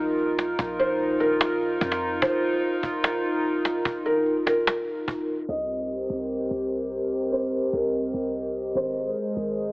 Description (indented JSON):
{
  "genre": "hip hop, atmospheric cloud-rap",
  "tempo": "147 BPM",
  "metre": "4/4",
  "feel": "half-time",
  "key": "C minor",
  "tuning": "A4 = 440 Hz",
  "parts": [
    { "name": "hollow soft pad", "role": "sustained chords", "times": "0.0-9.7 s", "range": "Ab3 to Eb5", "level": "-25 LUFS", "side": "equal", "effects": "chorus" },
    { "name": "clean 808-style bass", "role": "bass", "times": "0.0-9.7 s", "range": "Eb1 to F2", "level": "-39 LUFS", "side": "equal", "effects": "none" },
    { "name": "cajon", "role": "drums", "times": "0.2-5.2 s", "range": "none", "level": "-25 LUFS", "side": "equal", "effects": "none" },
    { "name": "felt-muted upright piano", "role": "melody", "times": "0.8-9.5 s", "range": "Bb4 to Eb5", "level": "-28 LUFS", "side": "equal", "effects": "tape echo" }
  ],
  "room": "light reverb, small room ambience",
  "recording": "low-pass filter, AM radio sound",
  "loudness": "-23 LUFS",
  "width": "side -23 dB against mid",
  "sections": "0.0-5.5 A section; 5.5-9.7 B section",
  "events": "filter sweep 5.5-9.7",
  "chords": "0.0 Bbsus4; 2.2 Ebsus2; 5.5 Cm7; 8.8 Abadd9"
}